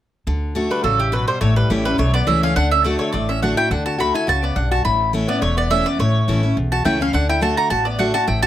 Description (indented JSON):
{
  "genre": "bluegrass",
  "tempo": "210 BPM",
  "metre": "4/4",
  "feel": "swing 53% on 8ths",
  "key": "D major",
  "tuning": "A4 = 440 Hz",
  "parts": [
    { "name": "picked steel-string acoustic guitar", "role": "accompaniment", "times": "0.3-8.5 s", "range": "E2 to F#4", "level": "-21 LUFS", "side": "left 1 dB", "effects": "none" },
    { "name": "upright bass", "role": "bass", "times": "0.3-8.5 s", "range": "E1 to D2", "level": "-22 LUFS", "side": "equal", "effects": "none" },
    { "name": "mandolin", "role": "melody", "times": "0.7-8.5 s", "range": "G4 to B5", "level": "-20 LUFS", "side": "right 2 dB", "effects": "none" },
    { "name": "lap resonator guitar", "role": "second line", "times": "0.7-8.5 s", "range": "E3 to F#4", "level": "-26 LUFS", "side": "left 4 dB", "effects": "none" }
  ],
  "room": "little or no reverb",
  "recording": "close, detailed microphones",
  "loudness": "-16 LUFS",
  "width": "side -12 dB against mid",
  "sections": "0.3-8.5 A section",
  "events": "none",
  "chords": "0.3 D; 1.4 A; 2.6 D; 4.8 A; 7.1 D"
}